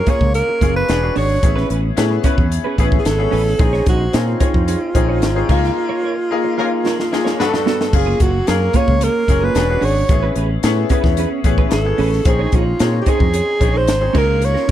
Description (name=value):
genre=polished 1980s jazz-funk pop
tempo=111 BPM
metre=4/4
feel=straight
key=unclear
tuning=A4 = 440 Hz
part: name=breathy alto saxophone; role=melody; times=0.0-14.7 s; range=F4 to Db5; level=-20 LUFS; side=right 2 dB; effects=none
part: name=clear concert grand piano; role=accompaniment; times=0.0-14.7 s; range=G2 to B4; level=-22 LUFS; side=left 6 dB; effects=lush chorus
part: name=clean electric guitar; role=riff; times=0.1-14.7 s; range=Bb3 to C#5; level=-23 LUFS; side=right 9 dB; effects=ensemble chorus
part: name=crisp fusion drum kit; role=drums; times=0.1-14.7 s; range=crash cymbal, hi-hat, kick drum, snare drum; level=-18 LUFS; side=equal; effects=none
part: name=fingered electric bass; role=bass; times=0.2-14.7 s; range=E1 to Bb2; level=-18 LUFS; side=equal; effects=none
part: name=warm horn section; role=second line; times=6.6-7.6 s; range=Db4 to B4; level=-22 LUFS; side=left 6 dB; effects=none
room=little or no reverb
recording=none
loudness=-14 LUFS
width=side -12 dB against mid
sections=0.0-7.9 A section; 7.9-14.7 A section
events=break 5.8-7.9; band accent 5.8-7.9; drum fill 6.8-7.9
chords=0.0 Gbmaj9; 0.9 E13; 1.4 Amaj9; 3.6 Bbm11; 5.5 Db6; 7.4 Gmaj9; 7.9 Gbmaj9; 9.6 E13; 10.1 Amaj9; 12.3 Bbm11; 14.1 Db6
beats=0.34 0.89 | 1.43 1.97 2.51 3.05 | 3.60 4.14 4.68 5.22 | 5.76 6.30 6.85 7.39 | 7.93 8.47 9.01 9.55 | 10.09 10.63 11.18 11.72 | 12.26 12.80 13.34 13.88 | 14.42